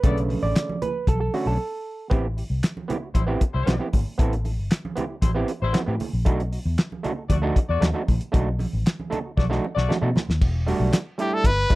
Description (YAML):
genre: funk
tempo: 116 BPM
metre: 4/4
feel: straight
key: unclear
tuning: A4 = 439 Hz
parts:
  - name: warm horn section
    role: second line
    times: 0.0-9.9 s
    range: G3 to D5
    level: -28 LUFS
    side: left 6 dB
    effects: none
  - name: overdriven clav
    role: stabs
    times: 0.0-11.8 s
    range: C#3 to D5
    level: -27 LUFS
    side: right 3 dB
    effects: none
  - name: vintage muted fingered electric bass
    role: bass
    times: 0.0-11.6 s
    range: E1 to B2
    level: -24 LUFS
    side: equal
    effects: none
  - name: cloth-damped thuddy drum kit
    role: drums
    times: 0.0-11.8 s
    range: crash cymbal, handclaps, hi-hat, kick drum, snare drum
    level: -21 LUFS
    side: equal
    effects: none
  - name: congas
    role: percussion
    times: 0.0-10.3 s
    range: none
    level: -32 LUFS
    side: right 4 dB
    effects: none
  - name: brilliant trumpet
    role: melody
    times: 11.2-11.8 s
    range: G4 to B4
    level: -22 LUFS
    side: equal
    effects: none
room: little or no reverb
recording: dry, close 1970s-style studio recording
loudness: -21 LUFS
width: side -19 dB against mid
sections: 0.0-2.1 A section; 2.1-10.4 B section; 10.4-11.8 C section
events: clav solo 0.0-2.1; break 1.6-2.1; drum fill 9.4-10.4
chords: 0.0 Bm7; 2.1 Am9; 6.3 B7#9; 10.4 Em11